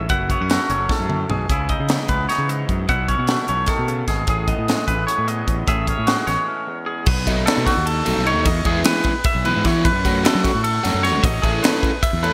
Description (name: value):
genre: math rock and midwest emo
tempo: 302 BPM (eighths)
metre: 7/8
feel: straight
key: A lydian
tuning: A4 = 445 Hz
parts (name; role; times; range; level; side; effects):
- twangy electric guitar; accompaniment; 0.0-7.1 s; E2 to G#4; -29 LUFS; equal; none
- twangy electric guitar; arpeggios; 0.0-12.3 s; F#4 to F#5; -25 LUFS; equal; delay
- fuzz fingered electric bass; bass; 0.0-12.3 s; F#1 to F#3; -26 LUFS; equal; overdrive
- crisp fusion drum kit; drums; 0.1-12.3 s; crash cymbal, hi-hat, kick drum, ride cymbal, snare drum, toms; -24 LUFS; equal; gated reverb
- biting overdriven guitar; riff; 7.3-12.3 s; B2 to A4; -25 LUFS; equal; none
room: light reverb, small room ambience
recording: bright 1980s-style digital production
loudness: -19 LUFS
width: mono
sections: 0.0-7.1 A section; 7.1-12.3 B section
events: drum fill 0.9-1.5; break 6.5-7.1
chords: 0.1 F#m9; 1.5 C#m9; 2.9 B9sus4; 4.3 Amaj9; 5.7 Amaj7; 7.1 B7; 8.5 Emaj7; 9.8 F#m; 11.2 Amaj9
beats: | 0.10 0.30 0.50 0.70 0.90 1.10 1.30 | 1.50 1.70 1.90 2.09 2.29 2.49 2.69 | 2.89 3.09 3.29 3.49 3.69 3.88 4.08 | 4.28 4.48 4.68 4.88 5.08 5.28 5.47 | 5.67 5.87 6.07 6.27 6.47 6.67 6.87 | 7.07 7.26 7.46 7.66 7.86 8.06 8.26 | 8.46 8.65 8.85 9.05 9.25 9.45 9.65 | 9.85 10.04 10.24 10.44 10.64 10.84 11.04 | 11.23 11.43 11.63 11.83 12.03 12.23